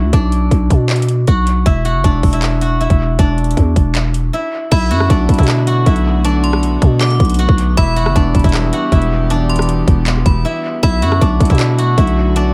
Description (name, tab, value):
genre	hip hop, trap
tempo	157 BPM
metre	4/4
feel	half-time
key	B minor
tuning	A4 = 436 Hz
part	steel-string zither	melody	0.0-12.5 s	D4 to F#5	-21 LUFS	equal	dub echo
part	growling 808-style bass	bass	0.0-12.5 s	E1 to B2	-17 LUFS	equal	none
part	garage drum kit	drums	0.1-12.4 s	crash cymbal, handclaps, hi-hat, kick drum, rim click	-17 LUFS	equal	none
part	metallic FM bell	second line	4.7-11.2 s	B5 to D6	-28 LUFS	equal	chorus, dub echo
part	dark chamber string section	sustained chords	4.7-12.5 s	D3 to G4	-25 LUFS	equal	none
room	little or no reverb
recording	echo-heavy mix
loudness	-14 LUFS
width	mono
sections	0.0-4.7 A section; 4.7-12.5 B section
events	break 4.3-4.7, 10.4-10.8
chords	0.0 Bm; 1.7 Dadd9/E; 4.7 Bm7; 7.8 Em; 10.8 Bm7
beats	| 0.13 0.51 0.90 1.28 | 1.66 2.04 2.42 2.81 | 3.19 3.57 3.95 4.33 | 4.72 5.10 5.48 5.86 | 6.25 6.63 7.01 7.39 | 7.77 8.16 8.54 8.92 | 9.30 9.68 10.07 10.45 | 10.83 11.21 11.60 11.98 | 12.36